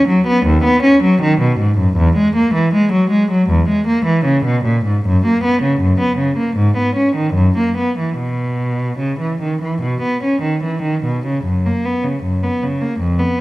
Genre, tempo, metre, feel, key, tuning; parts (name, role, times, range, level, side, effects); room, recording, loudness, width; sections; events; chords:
classical, baroque-style suite movement for unaccompanied cello; 72-80 BPM; 4/4; rubato; B major; A4 = 439 Hz
rich cello; solo; 0.0-13.4 s; D#2 to C#4; -13 LUFS; equal
wet recital hall reverb, RT60 1.7 s; dark, warm production; -13 LUFS; side -18 dB against mid
0.0-11.4 A section; 11.4-13.4 A section